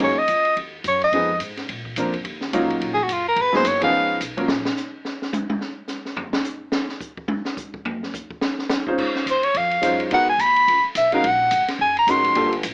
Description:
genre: jazz, small-group swing and bop.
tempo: 214 BPM.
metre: 4/4.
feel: swing 60% on 8ths.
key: Db major.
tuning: A4 = 440 Hz.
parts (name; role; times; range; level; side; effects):
breathy soprano saxophone; melody; 0.0-4.2, 9.3-12.5 s; F4 to C6; -17 LUFS; equal; none.
clear baby grand piano; accompaniment; 0.0-4.5, 8.9-12.5 s; F3 to C5; -22 LUFS; equal; none.
upright bass; bass; 0.0-4.6, 9.0-12.7 s; F1 to Bb2; -34 LUFS; equal; none.
open jazz drum kit; drums; 0.0-12.7 s; crash cymbal, hi-hat, kick drum, ride cymbal, snare drum, toms; -26 LUFS; equal; none.
room: light reverb.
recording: AM radio sound.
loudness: -18 LUFS.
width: side -35 dB against mid.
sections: 0.0-9.0 A section; 9.0-12.7 A section.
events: soprano saxophone solo 0.0-12.7; drum solo 4.5-9.0.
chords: 0.0 Gb69; 1.1 Fm7b5; 1.7 Bb; 2.2 Ebm7; 3.4 Abm7; 3.9 Db7; 4.5 N.C.; 8.4 Ab; 9.0 Dbmaj9; 10.1 Abm9; 10.7 Db5; 11.2 Gb6.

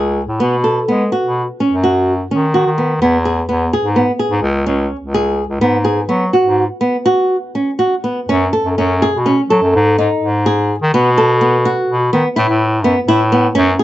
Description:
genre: contemporary instrumental, chamber music in an uneven meter.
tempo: 252 BPM (eighths).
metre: 11/8.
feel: straight.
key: B mixolydian.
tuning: A4 = 440 Hz.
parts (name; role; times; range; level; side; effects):
flamenco guitar; arpeggios; 0.0-13.8 s; B3 to A4; -14 LUFS; equal; plate reverb.
bright bass clarinet; bass; 0.0-13.8 s; C#2 to G#3; -16 LUFS; equal; none.
room: moderate small room reverb, RT60 0.5 s.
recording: dark, warm production, nothing above 7.9 kHz.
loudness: -12 LUFS.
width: side -14 dB against mid.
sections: 0.0-8.3 A section; 8.3-13.8 B section.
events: none.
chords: 0.4 B; 3.0 E; 4.4 C#5; 5.6 G#m7; 7.1 Bsus2; 8.3 F#m; 9.7 G#5; 10.9 B5; 12.4 Asus2.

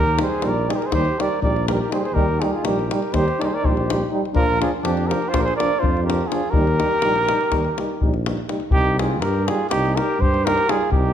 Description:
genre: balkan folk, Balkan brass band.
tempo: 246 BPM (eighths).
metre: 9/8.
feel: straight.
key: Eb major.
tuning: A4 = 439 Hz.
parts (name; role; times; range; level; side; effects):
dark trumpet; melody; 0.0-11.1 s; G4 to D5; -22 LUFS; right 2 dB; none.
mellow flugelhorn; second line; 0.0-11.1 s; D4 to Bb4; -28 LUFS; left 2 dB; none.
clear euphonium; accompaniment; 0.0-10.8 s; F3 to G3; -28 LUFS; right 4 dB; none.
mellow tuba; bass; 0.0-11.1 s; Bb1 to G2; -24 LUFS; equal; none.
warm French horn; accompaniment; 0.2-10.8 s; D4 to Eb4; -28 LUFS; left 4 dB; none.
davul; percussion; 0.2-11.0 s; none; -24 LUFS; left 2 dB; none.
room: moderate recital hall reverb, RT60 1.4 s.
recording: none.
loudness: -18 LUFS.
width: side -9 dB against mid.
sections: 0.0-8.7 A section; 8.7-11.1 B section.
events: none.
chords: 0.0 Eb; 4.3 Bb; 6.5 Eb; 8.7 Cm.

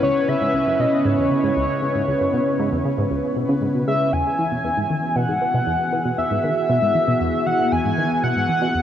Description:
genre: ambient, sequencer-driven space music.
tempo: 117 BPM.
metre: 4/4.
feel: straight.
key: unclear.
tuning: A4 = 440 Hz.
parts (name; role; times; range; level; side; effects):
pulse-width lead; melody; 0.0-8.8 s; C#5 to G#5; -21 LUFS; left 1 dB; chorus, ping-pong delay.
phased analog pad; sustained chords; 0.0-8.8 s; C#3 to B4; -23 LUFS; equal; phaser, chorus.
tight sequenced synth; riff; 0.0-8.8 s; C#2 to G#3; -24 LUFS; equal; chorus, ping-pong delay.
bubbling stepped-filter texture; texture; 0.0-8.8 s; B3 to B4; -31 LUFS; equal; chorus, built-in reverb.
room: wet huge ambient reverb, RT60 8.5 s.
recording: worn, warbling old tape, cassette tape, warbly pitch drift.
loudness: -18 LUFS.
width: side -10 dB against mid.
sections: 0.0-4.1 A section; 4.1-8.8 B section.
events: none.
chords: 0.0 C#m7; 4.1 Eadd9.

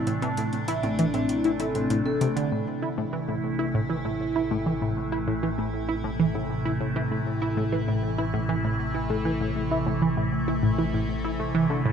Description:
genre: ambient, sequencer-driven space music.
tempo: 98 BPM.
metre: 4/4.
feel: straight.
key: A minor.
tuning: A4 = 437 Hz.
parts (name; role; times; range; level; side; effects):
evolving wavetable pad; sustained chords; 0.0-11.9 s; C3 to E4; -28 LUFS; equal; phaser, built-in reverb.
vibraphone with soft mallets; arpeggios; 0.0-2.3 s; A3 to A5; -30 LUFS; equal; auto-pan, analog delay.
fat analog bass; bass; 0.0-11.9 s; A1; -34 LUFS; equal; none.
tight sequenced synth; riff; 0.1-11.9 s; A2 to E4; -27 LUFS; equal; chorus, phaser, analog delay.
electronic hi-hat and congas; percussion; 0.1-2.5 s; none; -38 LUFS; right 2 dB; analog delay.
room: moderate plate reverb, RT60 2.6 s.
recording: cassette tape.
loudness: -24 LUFS.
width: side -7 dB against mid.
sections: 0.0-2.5 A section; 2.5-11.9 A section.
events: none.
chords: 0.0 Am.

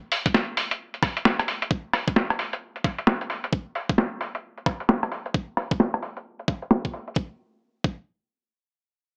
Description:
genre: UK garage, two-step garage.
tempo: 132 BPM.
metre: 4/4.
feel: swing 62% on 16ths.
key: none.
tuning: none.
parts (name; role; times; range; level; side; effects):
boom bap sampler-style drum kit; drums; 0.1-7.1 s; hi-hat, rim click, snare drum; -26 LUFS; equal; low-pass filter on hats, low-pass filter on snare.
electronic kick drum; drums; 0.3-8.0 s; none; -27 LUFS; equal; none.
room: light reverb, digital ambience.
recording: small speaker sound.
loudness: -26 LUFS.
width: mono.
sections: 0.0-7.2 A section; 7.2-9.2 B section.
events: filter sweep on drum 0.0-7.2.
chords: none.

